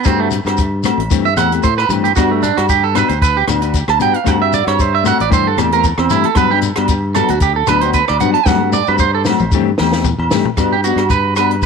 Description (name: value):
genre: highlife guitar band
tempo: 114 BPM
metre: 4/4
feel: swing 54% on 16ths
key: G major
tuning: A4 = 443 Hz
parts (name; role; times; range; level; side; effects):
- electric guitar at the edge of break-up; arpeggios; 0.0-11.7 s; A3 to A5; -16 LUFS; right 10 dB; tape echo
- shekere; percussion; 0.0-11.7 s; none; -25 LUFS; left 10 dB; none
- mellow electric guitar; accompaniment; 0.1-11.5 s; E3 to G4; -19 LUFS; left 17 dB; analog chorus
- modern bright fingered electric bass; bass; 0.1-11.7 s; A1 to A2; -19 LUFS; left 1 dB; none
- compact cocktail drum kit; drums; 0.1-11.7 s; hi-hat, kick drum, rim click, snare drum, toms; -18 LUFS; left 1 dB; none
- agogo bells; percussion; 0.1-11.5 s; none; -22 LUFS; right 3 dB; none
room: light reverb, studio ambience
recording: 1960s-style stereo with parts hard left and right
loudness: -12 LUFS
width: side -5 dB against mid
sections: 0.0-10.6 A section; 10.6-11.7 B section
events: clean electric guitar solo 0.0-10.6; drum fill 8.5-10.6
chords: 0.1 Am7; 1.1 Am; 2.2 Gmaj7; 4.3 Am7; 5.3 Am; 6.4 Gmaj7; 8.5 Am13; 9.5 Am; 10.6 Gmaj7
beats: | 0.06 0.58 1.11 1.64 | 2.17 2.69 3.22 3.75 | 4.27 4.80 5.33 5.85 | 6.38 6.90 7.43 7.95 | 8.47 9.00 9.52 10.05 | 10.57 11.10 11.62